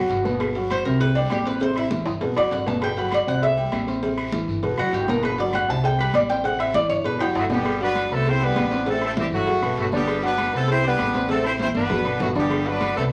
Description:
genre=latin, salsa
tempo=198 BPM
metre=4/4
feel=straight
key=G major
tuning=A4 = 440 Hz
part: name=Cuban tres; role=melody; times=0.0-7.3 s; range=D4 to A5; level=-26 LUFS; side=equal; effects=none
part: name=dark baby grand piano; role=accompaniment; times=0.0-13.1 s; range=B2 to C6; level=-28 LUFS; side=equal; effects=none
part: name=upright bass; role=bass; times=0.0-13.1 s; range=F#1 to C2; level=-31 LUFS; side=equal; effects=none
part: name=congas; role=percussion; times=0.1-13.1 s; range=none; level=-33 LUFS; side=equal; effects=none
part: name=cowbell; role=percussion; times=0.1-13.0 s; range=none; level=-34 LUFS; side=equal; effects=none
part: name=guiro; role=percussion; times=0.1-13.1 s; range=none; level=-46 LUFS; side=equal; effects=none
part: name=agogo bells and timbales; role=percussion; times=0.3-13.0 s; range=none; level=-35 LUFS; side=equal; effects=none
part: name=claves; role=percussion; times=0.4-13.0 s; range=none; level=-43 LUFS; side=equal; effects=none
part: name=clear horn section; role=melody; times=7.4-13.0 s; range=F#3 to C5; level=-25 LUFS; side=equal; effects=none
room=wet large studio reverb, RT60 0.9 s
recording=vinyl crackle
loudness=-22 LUFS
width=mono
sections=0.0-7.7 A section; 7.7-13.1 B section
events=Cuban tres solo 0.0-7.7; drum fill 2.1-2.8, 7.2-7.7, 11.6-12.5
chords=0.0 Gmaj7; 1.0 C5; 1.6 Am7; 2.2 Gmaj7; 3.4 C; 4.0 Am7; 4.6 Gmaj7; 5.8 C5; 6.4 Am7; 7.1 Gmaj7; 8.3 Cmaj7; 8.9 Am7; 9.5 Gmaj9; 10.7 Cmaj7; 11.3 Am7; 11.9 Gmaj7

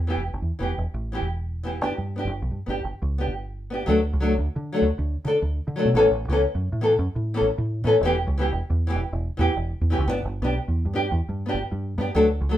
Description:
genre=highlife guitar band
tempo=116 BPM (dotted quarters)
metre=12/8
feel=straight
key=D major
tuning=A4 = 440 Hz
part: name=deep dub fingered electric bass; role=bass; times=0.0-12.6 s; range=E1 to D3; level=-25 LUFS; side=right 1 dB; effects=none
part: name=nylon-string guitar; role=accompaniment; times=0.1-12.6 s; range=E3 to A4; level=-22 LUFS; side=left 1 dB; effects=none
room=moderate studio reverb, RT60 0.6 s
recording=band playing live in one room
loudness=-22 LUFS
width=side -12 dB against mid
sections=0.0-3.9 A section; 3.9-12.6 B section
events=none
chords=0.0 Em; 1.8 G; 3.9 D; 6.0 Aadd9; 8.0 Em; 10.1 G

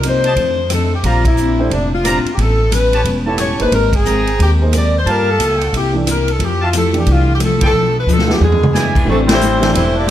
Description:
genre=jazz, big band swing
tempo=179 BPM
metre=4/4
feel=swing 64% on 8ths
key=unclear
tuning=A4 = 440 Hz
part: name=warm saxophone section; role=melody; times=0.0-10.1 s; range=G3 to D5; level=-17 LUFS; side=left 1 dB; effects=none
part: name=picked steel-string acoustic guitar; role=accompaniment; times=0.0-10.1 s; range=F2 to Bb4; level=-21 LUFS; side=left 4 dB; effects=none
part: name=warm baby grand piano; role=accompaniment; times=0.0-9.7 s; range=E3 to C#5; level=-22 LUFS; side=right 3 dB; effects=none
part: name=upright bass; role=bass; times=0.0-10.1 s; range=E1 to G2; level=-16 LUFS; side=equal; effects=none
part: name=swinging big-band drum kit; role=drums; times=0.0-10.1 s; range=crash cymbal, hi-hat, kick drum, ride cymbal, rim click, snare drum, toms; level=-20 LUFS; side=equal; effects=none
part: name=warm trumpet section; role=stabs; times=0.2-9.1 s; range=E4 to Bb5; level=-22 LUFS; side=right 2 dB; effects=none
part: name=muted trombone section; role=second line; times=8.4-10.1 s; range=B2 to D4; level=-21 LUFS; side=left 1 dB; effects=none
room=moderate large studio reverb, RT60 1.2 s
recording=none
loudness=-12 LUFS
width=side -12 dB against mid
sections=0.0-9.1 A section; 9.1-10.1 B section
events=band accent 1.2, 3.9, 7.6, 9.2; drum fill 8.1-8.7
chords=0.4 F6; 1.0 Bb69; 2.4 A9; 3.7 Abmaj9; 5.1 Gm9; 5.7 C7; 6.4 Fmaj9; 7.7 Bm7b5; 8.4 E7; 9.1 Am7

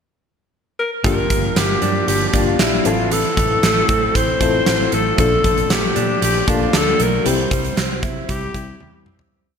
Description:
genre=1980s-style pop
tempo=116 BPM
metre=4/4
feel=straight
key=G dorian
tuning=A4 = 440 Hz
part: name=warm alto saxophone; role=melody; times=0.8-9.0 s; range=E4 to C5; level=-20 LUFS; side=left 3 dB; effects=digital delay
part: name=FM electric piano with tremolo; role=accompaniment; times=1.0-9.3 s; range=Bb2 to A4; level=-23 LUFS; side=left 5 dB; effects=none
part: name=direct-recorded clean electric guitar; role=riff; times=1.0-9.6 s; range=E3 to E4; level=-26 LUFS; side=right 6 dB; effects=wide subtle chorus
part: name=vintage muted fingered electric bass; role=bass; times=1.0-9.3 s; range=G1 to C3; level=-24 LUFS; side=right 1 dB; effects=none
part: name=huge arena drum kit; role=drums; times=1.0-9.3 s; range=hi-hat, kick drum, snare drum, toms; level=-19 LUFS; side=right 1 dB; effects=gated reverb
room=moderate lush hall reverb, RT60 1.8 s, small room ambience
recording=bright 1980s-style digital production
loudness=-15 LUFS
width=side -6 dB against mid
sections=0.0-1.0 pickup bar; 1.0-9.3 verse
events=fade-out 7.3-9.3; drum fill 8.8-9.3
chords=0.0 N.C.; 1.0 Gm7; 2.9 Fmaj7/A; 5.2 Bbmaj7; 7.3 C

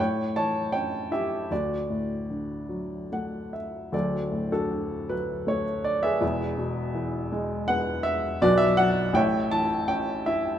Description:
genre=classical, lyrical solo piano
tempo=69-83 BPM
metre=3/4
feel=rubato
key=D major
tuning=A4 = 440 Hz
part: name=warm upright piano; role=solo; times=0.0-10.6 s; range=D1 to A5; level=-24 LUFS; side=equal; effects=none
room=moderate recital hall reverb, RT60 1.6 s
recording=minimal, uncompressed stereo recording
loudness=-24 LUFS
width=side -10 dB against mid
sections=0.0-3.9 A section; 3.9-10.6 A section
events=none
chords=0.0 A7; 1.5 D; 6.2 E; 8.4 B5; 9.1 A

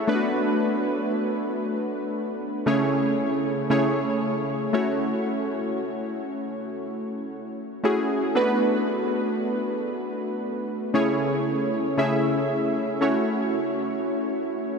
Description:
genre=R&B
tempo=58 BPM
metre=4/4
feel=straight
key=F# minor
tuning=A4 = 440 Hz
part: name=warm analog keys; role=solo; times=0.0-14.8 s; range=C#3 to A5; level=-23 LUFS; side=equal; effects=chorus, tape echo
room=wet huge ambient reverb, RT60 7.6 s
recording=dreamy mix soaked in reverb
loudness=-23 LUFS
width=side -5 dB against mid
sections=0.0-14.8 A section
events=none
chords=0.1 D6; 2.7 Amaj7/C#; 4.7 F#m7; 8.4 D6; 10.9 Amaj7/C#; 13.0 F#m7

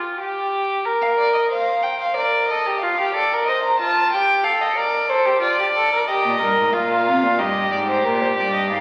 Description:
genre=classical, baroque-style fugue for string quartet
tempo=92 BPM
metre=4/4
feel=straight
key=Eb major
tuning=A4 = 440 Hz
part: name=dark violin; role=second line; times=0.0-8.8 s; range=F4 to C5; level=-23 LUFS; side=equal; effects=none
part: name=warm violin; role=melody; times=1.0-8.8 s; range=Bb4 to Bb5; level=-22 LUFS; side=equal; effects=none
part: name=rich cello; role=bass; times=6.3-8.8 s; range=G2 to C3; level=-27 LUFS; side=equal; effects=none
room=wet scoring stage reverb, RT60 1.6 s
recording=very old 78 rpm record, vinyl crackle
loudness=-19 LUFS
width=mono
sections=0.0-8.8 A section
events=none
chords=0.0 N.C.; 0.9 Bb; 3.5 Cm; 4.8 Bb; 6.1 Eb/G

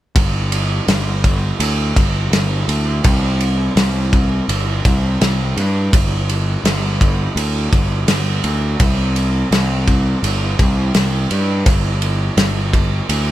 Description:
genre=rock, shoegaze and dream pop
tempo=84 BPM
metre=4/4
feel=straight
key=unclear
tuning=A4 = 441 Hz
part: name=fuzz picked electric bass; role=bass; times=0.2-13.3 s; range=G1 to G2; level=-17 LUFS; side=equal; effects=overdrive
part: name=loose indie drum kit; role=drums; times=0.2-13.3 s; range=kick drum, ride cymbal, snare drum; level=-17 LUFS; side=equal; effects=none
room=little or no reverb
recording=none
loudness=-14 LUFS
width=side -14 dB against mid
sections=0.2-13.3 A section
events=none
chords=none

